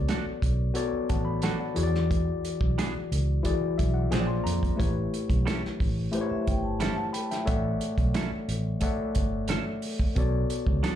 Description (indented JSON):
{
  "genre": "lush 1970s-style soul",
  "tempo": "89 BPM",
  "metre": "4/4",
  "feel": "straight",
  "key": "B minor",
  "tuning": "A4 = 440 Hz",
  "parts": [
    { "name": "mellow tine electric piano", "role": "accompaniment", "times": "0.0-11.0 s", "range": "E3 to B#5", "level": "-30 LUFS", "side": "left 4 dB", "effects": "overdrive, plate reverb, slapback echo" },
    { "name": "vintage muted fingered electric bass", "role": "bass", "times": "0.0-10.8 s", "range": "G1 to E#2", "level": "-28 LUFS", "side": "right 1 dB", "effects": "none" },
    { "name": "semi-hollow electric guitar", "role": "riff", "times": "0.1-11.0 s", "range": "E3 to A4", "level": "-33 LUFS", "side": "right 10 dB", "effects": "slapback echo" },
    { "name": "warm soul drum kit", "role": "drums", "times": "0.1-11.0 s", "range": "hi-hat, kick drum, snare drum", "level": "-29 LUFS", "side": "right 1 dB", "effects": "none" },
    { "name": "vibraphone with soft mallets", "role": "texture", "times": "6.2-7.4 s", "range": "C#5 to A5", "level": "-37 LUFS", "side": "right 3 dB", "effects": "plate reverb" }
  ],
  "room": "light reverb",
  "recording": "live gig heard through the venue's PA, club reverb",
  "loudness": "-25 LUFS",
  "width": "side -10 dB against mid",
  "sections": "0.0-11.0 A section",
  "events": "tine electric piano fill 3.4-4.8",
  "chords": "0.0 Bm7; 1.8 E7; 4.1 A#9; 4.8 A7; 7.5 Dmaj9/A; 10.2 Bm7",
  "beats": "0.08 0.76 1.43 | 2.10 2.77 3.45 4.12 | 4.79 5.46 6.13 6.80 | 7.48 8.15 8.82 9.49 | 10.16 10.84"
}